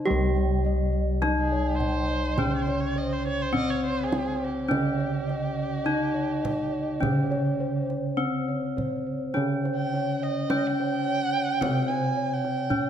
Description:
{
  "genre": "Javanese gamelan",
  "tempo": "52 BPM",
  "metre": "4/4",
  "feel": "straight",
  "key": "C pelog",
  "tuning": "A4 = 440 Hz",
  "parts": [
    { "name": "gamelan-type bronze metallophone", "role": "melody", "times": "0.0-12.9 s", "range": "C4 to G4-30c", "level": "-28 LUFS", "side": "left 2 dB", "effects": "none" },
    { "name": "gamelan-type bronze metallophone", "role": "accompaniment", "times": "0.0-12.9 s", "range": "C3 to G3-30c", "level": "-32 LUFS", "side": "right 3 dB", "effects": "none" },
    { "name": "gamelan-type bossed gongs", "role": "arpeggios", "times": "0.0-12.9 s", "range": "C5 to Eb5-30c", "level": "-34 LUFS", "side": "left 2 dB", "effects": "none" },
    { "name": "gamelan-type bossed gongs", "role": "bass", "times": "0.0-12.9 s", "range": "C2 to G4-30c", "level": "-30 LUFS", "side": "left 1 dB", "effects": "none" },
    { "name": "gamelan-type bronze metallophone", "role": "arpeggios", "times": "0.1-12.9 s", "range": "C5 to G5-30c", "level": "-36 LUFS", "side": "right 5 dB", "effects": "none" },
    { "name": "kendang", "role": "percussion", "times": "0.4-12.9 s", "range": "none", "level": "-34 LUFS", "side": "right 2 dB", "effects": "none" },
    { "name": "warm erhu", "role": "second line", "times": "1.4-12.9 s", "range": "G4-28c to Ab5-24c", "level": "-32 LUFS", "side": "right 3 dB", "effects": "none" }
  ],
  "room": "moderate concert hall reverb, RT60 2.4 s",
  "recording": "none",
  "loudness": "-24 LUFS",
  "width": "side -9 dB against mid",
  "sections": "0.1-12.9 A section",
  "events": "none",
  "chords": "none"
}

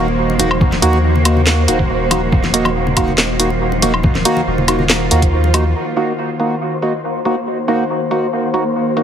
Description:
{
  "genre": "deep dubstep",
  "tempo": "140 BPM",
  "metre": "4/4",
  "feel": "half-time",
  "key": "Eb dorian",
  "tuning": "A4 = 442 Hz",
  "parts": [
    { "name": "bowed-like drone", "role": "sustained chords", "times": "0.0-9.0 s", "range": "Eb3 to Gb4", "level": "-21 LUFS", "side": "equal", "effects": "built-in reverb, vintage 12-bit sampler grit" },
    { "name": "percussive organ stab", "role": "stabs", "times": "0.0-9.0 s", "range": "Bb3 to Gb4", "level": "-18 LUFS", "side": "right 1 dB", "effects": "analog chorus, dub echo" },
    { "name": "soft dub sub bass", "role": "bass", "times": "0.0-5.7 s", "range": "Eb1 to Eb2", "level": "-18 LUFS", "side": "equal", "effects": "none" },
    { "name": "wind-like tuned noise texture", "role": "texture", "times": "0.0-9.0 s", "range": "C5", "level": "-24 LUFS", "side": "right 1 dB", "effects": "built-in reverb" },
    { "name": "congas", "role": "percussion", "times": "0.1-5.6 s", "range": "none", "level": "-24 LUFS", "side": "left 3 dB", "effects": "dub echo" },
    { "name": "garage drum kit", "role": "drums", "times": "0.4-9.0 s", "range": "handclaps, hi-hat, snare drum, woodblock", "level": "-17 LUFS", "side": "left 1 dB", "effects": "low-pass filter on cymbals, low-pass filter on snare, low-pass filter on hats, low-pass filter on perc, low-pass filter on room" },
    { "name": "electronic kick drum", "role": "drums", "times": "0.6-5.3 s", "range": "none", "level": "-16 LUFS", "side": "equal", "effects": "overdrive" }
  ],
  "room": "moderate lush hall reverb, RT60 1.6 s",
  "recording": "heavily compressed radio sound, multiband compression",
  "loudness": "-13 LUFS",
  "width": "side -8 dB against mid",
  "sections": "0.0-5.8 A section; 5.8-9.0 B section",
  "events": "drop 0.0-5.8; filter sweep on synth drone 5.8-9.0",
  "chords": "0.0 Ebm"
}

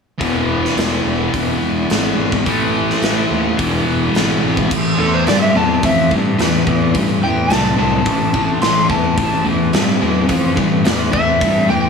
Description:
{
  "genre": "blues rock power trio and southern rock",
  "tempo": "107 BPM",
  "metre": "4/4",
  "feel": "straight",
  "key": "A minor from 4.7 s",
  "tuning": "A4 = 440 Hz",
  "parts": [
    { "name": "thick fuzz guitar", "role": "riff", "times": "0.2-11.9 s", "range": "E2 to A3", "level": "-17 LUFS", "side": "left 2 dB", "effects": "distortion" },
    { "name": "fuzz fingered electric bass", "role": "bass", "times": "0.2-11.9 s", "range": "E1 to G2", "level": "-20 LUFS", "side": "equal", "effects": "overdrive" },
    { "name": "big rock drum kit", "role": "drums", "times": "0.2-11.5 s", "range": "crash cymbal, hi-hat, kick drum, snare drum", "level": "-20 LUFS", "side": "equal", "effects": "none" },
    { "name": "overdriven slide guitar", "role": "melody", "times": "5.0-11.9 s", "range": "A4 to C6", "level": "-19 LUFS", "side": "equal", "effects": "analog delay" }
  ],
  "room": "light reverb",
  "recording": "none",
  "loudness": "-13 LUFS",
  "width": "side -5 dB against mid",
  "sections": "0.2-4.7 A section; 4.7-11.9 B section",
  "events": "none",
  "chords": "0.2 E; 2.5 A5; 3.6 E; 4.7 A7(no3)"
}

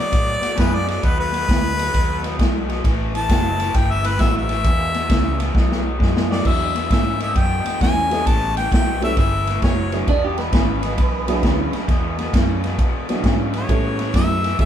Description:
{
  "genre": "electric blues shuffle",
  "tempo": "133 BPM",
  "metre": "4/4",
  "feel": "swing 66% on 8ths",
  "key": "E mixolydian",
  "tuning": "A4 = 439 Hz",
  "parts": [
    { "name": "warm harmonica", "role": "melody", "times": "0.0-10.0, 13.6-14.7 s", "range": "B4 to A5", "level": "-23 LUFS", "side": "left 3 dB", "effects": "none" },
    { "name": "raw garage guitar", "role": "riff", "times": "0.0-14.7 s", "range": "E2 to G#3", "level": "-25 LUFS", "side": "left 3 dB", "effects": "overdrive" },
    { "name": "vintage muted fingered electric bass", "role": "bass", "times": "0.1-14.7 s", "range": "E1 to B2", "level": "-25 LUFS", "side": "equal", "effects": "none" },
    { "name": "swinging big-band drum kit", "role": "drums", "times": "0.1-14.7 s", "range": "crash cymbal, kick drum, ride cymbal, snare drum", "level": "-20 LUFS", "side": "equal", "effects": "none" },
    { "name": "dark upright piano", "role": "accompaniment", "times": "6.4-14.7 s", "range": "F#3 to A4", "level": "-26 LUFS", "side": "right 2 dB", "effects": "none" },
    { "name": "electric guitar through a small old amp", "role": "second line", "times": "10.1-11.9 s", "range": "D4 to B4", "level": "-25 LUFS", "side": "right 5 dB", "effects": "none" }
  ],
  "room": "moderate large studio reverb, RT60 1.2 s",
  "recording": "band playing live in one room",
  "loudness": "-17 LUFS",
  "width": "side -10 dB against mid",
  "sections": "0.0-6.5 A section; 6.5-14.7 B section",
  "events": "harmonica solo 0.0-6.5; drum fill 5.6-6.5",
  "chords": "0.0 B; 2.8 A5; 4.6 E5; 5.6 B5; 6.5 E9; 8.3 A9; 10.1 E9; 13.7 A9"
}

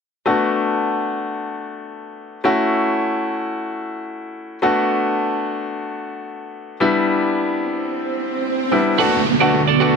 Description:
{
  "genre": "pop",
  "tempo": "110 BPM",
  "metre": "4/4",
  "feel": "straight",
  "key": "B minor",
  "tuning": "A4 = 442 Hz",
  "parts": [
    { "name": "clear grand piano", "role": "accompaniment", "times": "0.3-10.0 s", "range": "G3 to F#4", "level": "-19 LUFS", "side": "left 2 dB", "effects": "none" },
    { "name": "swell and downlifter", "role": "sound effects", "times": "7.6-10.0 s", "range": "none", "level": "-23 LUFS", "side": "right 4 dB", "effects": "none" },
    { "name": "string machine, cellos", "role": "sustained chords", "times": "9.0-10.0 s", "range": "D3 to A4", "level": "-19 LUFS", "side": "right 2 dB", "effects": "ensemble chorus" },
    { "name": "twelve-string electric guitar", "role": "riff", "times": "9.0-10.0 s", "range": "F#4 to D5", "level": "-19 LUFS", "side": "right 13 dB", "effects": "wide subtle chorus" }
  ],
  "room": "light reverb",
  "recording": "none",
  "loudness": "-17 LUFS",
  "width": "side -5 dB against mid",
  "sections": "0.3-9.0 A section",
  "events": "swell 7.6-9.0",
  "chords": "0.3 Bm7; 2.4 A6; 4.6 Bm7; 6.8 Em7; 9.0 Bm7"
}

